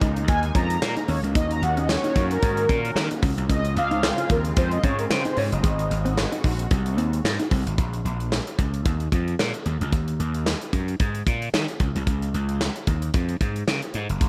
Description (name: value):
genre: early-eighties boogie funk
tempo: 112 BPM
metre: 4/4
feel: swing 56% on 16ths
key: unclear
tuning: A4 = 438 Hz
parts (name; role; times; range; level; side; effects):
- lush unison pad; sustained chords; 0.0-7.8 s; Db3 to Gb4; -35 LUFS; equal; chorus, phaser
- mellow electric guitar; riff; 0.0-7.6 s; Ab3 to F4; -33 LUFS; equal; subtle chorus
- gritty slap bass; bass; 0.0-14.3 s; Gb1 to Eb3; -27 LUFS; equal; overdrive
- modern studio drum kit; drums; 0.0-14.3 s; handclaps, hi-hat, kick drum, snare drum; -27 LUFS; equal; gated reverb
- mellow synth brass; accompaniment; 0.3-6.3 s; Bb4 to Bb5; -29 LUFS; equal; chorus
room: small room ambience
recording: none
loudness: -24 LUFS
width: mono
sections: 0.0-7.8 A section; 7.8-14.3 B section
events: analog polysynth solo 0.0-7.8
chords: 0.0 Bb7sus4; 1.1 Ebm7; 3.2 Dbmaj7; 5.6 Ab7; 7.8 Bbsus4; 9.7 N.C.; 11.8 Db5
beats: 0.28 0.82 | 1.35 1.89 2.42 2.96 | 3.50 4.03 4.57 5.10 | 5.64 6.17 6.71 7.25 | 7.78 8.32 8.85 9.39 | 9.92 10.46 10.99 11.53 | 12.07 12.60 13.14 13.67 | 14.21